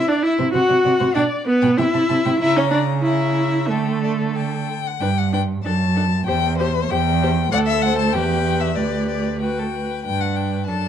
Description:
quick classical-period movement for string quartet; 95 BPM; 2/4; uneven beats, rubato; G major; A4 = 440 Hz
warm violin; second line; 0.0-10.9 s; A4 to F#5; -27 LUFS; left 4 dB
rich viola; accompaniment; 0.0-10.9 s; A3 to A4; -21 LUFS; equal
dark violin; melody; 0.4-10.9 s; C5 to A#5; -25 LUFS; left 12 dB
dark cello; bass; 0.4-10.9 s; D2 to D3; -21 LUFS; right 4 dB
light reverb; dark, warm production; -17 LUFS; side -9 dB against mid
0.0-5.0 A section; 5.0-10.9 B section
0.0 N.C.; 0.6 D7/C; 1.2 G (rootless); 1.8 Am/C; 2.4 C#m6; 3.7 Dsus4; 5.0 G; 5.6 D/F#; 6.3 C/E; 7.5 D5; 8.1 Em; 8.8 G/D; 9.4 D; 10.1 G
0.55 | 1.16 1.79 | 2.42 3.06 | 3.71 4.36 | 5.01 5.64 | 6.27 6.91 | 7.52 8.13 | 8.76 9.41 | 10.05 10.67

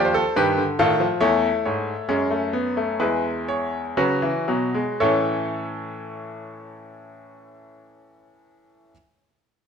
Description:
classical, baroque-style 4-part fugue for grand piano; 57-73 BPM; 4/4; straight; A major; A4 = 441 Hz
bright grand piano; solo; 0.0-8.9 s; Eb2 to C#5; -20 LUFS; left 1 dB
moderate recital hall reverb, RT60 1.4 s; -20 LUFS; side -6 dB against mid
0.0-5.0 A section; 5.0-9.2 B section
slowing down 0.0-5.0
0.0 F7; 1.2 A/E; 3.0 E; 5.0 A
0.36 | 1.21 2.08 3.00 3.98 | 5.01 6.06 7.12 8.17

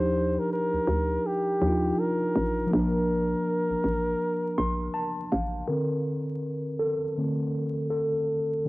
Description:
lo-fi hip hop; 81 BPM; 4/4; swing 63% on 16ths; Bb major; A4 = 444 Hz
breathy flugelhorn; melody; 0.0-5.3 s; G4 to C5; -28 LUFS; equal; low-pass filter
tine electric piano; accompaniment; 0.0-8.7 s; D3 to C6; -27 LUFS; equal; medium stereo tremolo, low-pass filter
hollow knocking FM bass; bass; 0.0-5.6 s; A1 to Eb2; -29 LUFS; equal
moderate spring reverb, RT60 3.0 s; home recording on cassette, vinyl crackle; -25 LUFS; side -20 dB against mid
0.0-5.7 A section; 5.7-8.7 B section
tine electric piano solo 5.7-8.7; filter sweep on tine electric piano 5.7-8.7
0.0 Ebmaj9; 2.7 Bbmaj7; 5.7 Bbmaj9
0.49 1.24 1.98 | 2.72 3.46 4.20 4.94 | 5.68 6.42 7.16 7.90 | 8.64

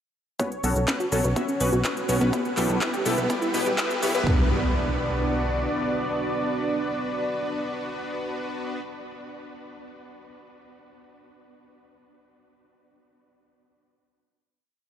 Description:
progressive house; 124 BPM; 4/4; straight; B minor; A4 = 444 Hz
wide unison lead; melody; 0.4-8.8 s; C#5 to D5; -33 LUFS; right 1 dB; sidechain pumping, analog delay
lush unison pad; sustained chords; 0.9-8.8 s; G3 to D5; -31 LUFS; right 1 dB; chorus, phaser, sidechain pumping
wide unison pluck; arpeggios; 0.4-4.5 s; B3 to B4; -31 LUFS; equal; cassette tape, sidechain pumping, analog delay
supersaw stab; stabs; 0.4-8.8 s; B3 to E5; -30 LUFS; left 2 dB; wide subtle chorus, sidechain pumping, low-pass filter, analog delay
big-room dance drum kit; drums; 0.4-4.2 s; handclaps, hi-hat, shaker; -32 LUFS; equal
electronic kick drum; drums; 0.4-4.4 s; -27 LUFS; equal; high-pass filter on kick, high-pass filter on room
riser and impact; sound effects; 2.6-8.8 s; -33 LUFS; equal
plucky analog bass; bass; 0.6-5.7 s; B1; -28 LUFS; equal; sidechain pumping
wet huge ambient reverb, RT60 8.6 s; dreamy mix soaked in reverb, high-pass filter; -23 LUFS; side -9 dB against mid
0.4-4.3 build; 4.3-8.1 final chord
build-up 0.4-4.3; filter sweep on synth pluck 0.4-4.3; filter sweep on supersaw synth 0.4-4.3
0.4 Bsus2; 2.3 Em/B; 4.3 Bm
| 0.40 0.88 1.36 1.85 | 2.33 2.81 3.30 3.78 | 4.27 4.75 5.23 5.72 | 6.20 6.69 7.17 7.65

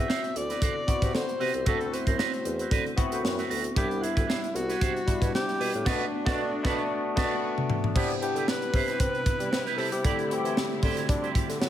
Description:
polished 1980s jazz-funk pop; 115 BPM; 4/4; swing 54% on 16ths; A4 = 440 Hz
warm alto saxophone; melody; 0.0-10.4 s; D4 to E5; -32 LUFS; left 2 dB
barky tine electric piano; accompaniment; 0.0-11.7 s; G3 to F#5; -32 LUFS; left 2 dB; overdrive, lush chorus
electric guitar with an envelope filter; riff; 0.0-11.6 s; C4 to D5; -34 LUFS; right 9 dB; wide subtle chorus
mellow bassoon; bass; 0.0-11.7 s; C2 to D4; -33 LUFS; equal
crisp fusion drum kit; drums; 0.1-11.7 s; crash cymbal, hi-hat, kick drum, snare drum, toms; -28 LUFS; equal; gated reverb
muted studio string section; sustained chords; 8.0-11.7 s; C3 to E4; -37 LUFS; equal
light reverb, studio reverb; -25 LUFS; side -11 dB against mid
0.0-8.0 A section; 8.0-11.7 B section
band accent 5.9-8.0; drum fill 6.9-8.0
0.0 D13; 3.8 Cmaj9; 5.9 Bm7; 8.0 Cmaj7; 10.0 D9sus4
0.09 0.62 1.14 | 1.67 2.19 2.72 3.24 | 3.77 4.29 4.81 5.34 | 5.86 6.38 6.91 7.43 | 7.96 8.48 9.00 9.52 | 10.05 10.57 11.09 11.61

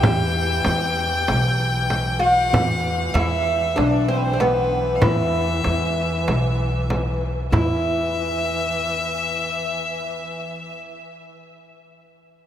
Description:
Arabic maqam ensemble; 96 BPM; 4/4; straight; E maqam bayati; A4 = 441 Hz
oud; melody; 0.0-11.0 s; B3 to G4; -23 LUFS; equal; tape echo
clear violin; second line; 0.0-10.8 s; B4 to G5; -25 LUFS; left 4 dB
upright bass; bass; 0.0-11.0 s; B1 to E2; -24 LUFS; equal
warm duduk; drone; 0.0-10.8 s; E3; -30 LUFS; equal
frame drum; percussion; 0.0-7.8 s; -24 LUFS; right 1 dB
wet huge ambient reverb, RT60 4.8 s; dreamy mix soaked in reverb; -19 LUFS; side -10 dB against mid
0.0-7.5 A section; 7.5-10.0 B section
| 0.03 0.66 1.28 1.91 | 2.53 3.15 3.78 4.40 | 5.03 5.65 6.28 6.90 | 7.53 8.15 8.78 9.40

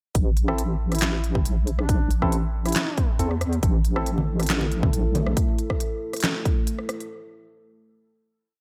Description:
deep dubstep; 138 BPM; 4/4; half-time; A phrygian; A4 = 444 Hz
deep soft wobble bass; bass; 0.1-5.4 s; A1 to E2; -26 LUFS; equal; chorus
dubstep drum kit; drums; 0.1-7.1 s; handclaps, hi-hat, rim click, snare drum; -30 LUFS; equal
electronic kick drum; drums; 0.1-6.5 s; -25 LUFS; equal
percussive organ stab; stabs; 0.5-4.1 s; C4 to A4; -34 LUFS; equal; chorus, dub echo
mellow duduk; melody; 0.9-3.1 s; D4 to E4; -36 LUFS; equal; dub echo
dark analog pad; sustained chords; 4.0-7.1 s; A3 to A4; -34 LUFS; equal; chorus
congas; percussion; 4.2-5.2 s; -32 LUFS; equal
light reverb, digital ambience; -24 LUFS; mono
0.1-7.1 drop
drop 0.1-7.1
0.1 Am
| 0.15 0.58 1.02 1.45 | 1.89 2.32 2.76 3.19 | 3.63 4.06 4.50 4.93 | 5.37 5.80 6.24 6.67

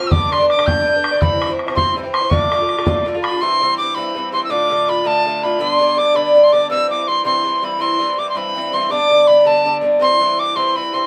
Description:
celtic folk, Celtic jig; 109 BPM (dotted quarters); 6/8; straight; A4 = 441 Hz
bright tin whistle; melody; 0.0-11.1 s; A5 to G6; -20 LUFS; equal
Irish bouzouki; accompaniment; 0.0-11.1 s; G2 to F4; -19 LUFS; equal
bodhran; percussion; 0.1-3.3 s; -22 LUFS; equal
moderate studio ambience, RT60 0.5 s; band playing live in one room; -16 LUFS; mono
0.0-3.4 A section; 3.4-11.1 B section
0.1 G; 1.2 C; 2.3 Dm; 3.4 C; 4.5 Dm; 5.6 G; 6.7 C; 8.9 G; 10.0 C
| 0.11 0.66 | 1.21 1.76 | 2.31 2.86 | 3.41 3.96 | 4.51 5.06 | 5.61 6.16 | 6.71 7.26 | 7.81 8.36 | 8.90 9.46 | 10.00 10.55

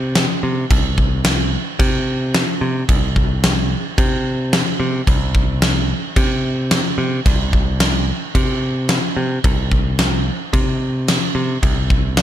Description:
post-rock; 110 BPM; 4/4; straight; A4 = 438 Hz
modern bright picked electric bass; bass; 0.0-12.2 s; C2 to C3; -19 LUFS; equal
huge arena drum kit; drums; 0.2-12.2 s; crash cymbal, kick drum, snare drum; -17 LUFS; equal
little or no reverb; -15 LUFS; side -11 dB against mid
0.0-12.2 A section
0.16 | 0.70 1.25 1.79 2.34 | 2.88 3.43 3.98 4.52 | 5.07 5.62 6.16 6.71 | 7.25 7.80 8.35 8.89 | 9.44 9.99 10.54 11.08 | 11.63 12.18

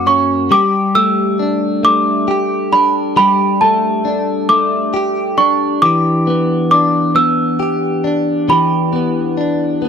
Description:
pop; 45 BPM (dotted quarters); 6/8; straight; A4 = 440 Hz
small celesta; melody; 0.0-9.9 s; A5 to E6; -14 LUFS; right 1 dB
direct-recorded clean electric guitar; accompaniment; 0.0-9.9 s; F#2 to G4; -15 LUFS; left 1 dB; double-tracked left and right
light reverb; -12 LUFS; side -7 dB against mid
0.0-9.9 A section
0.0 F#; 0.5 Gsus2; 5.8 Em7
| 0.51 1.83 | 3.16 4.49 | 5.82 7.15 | 8.48 9.82

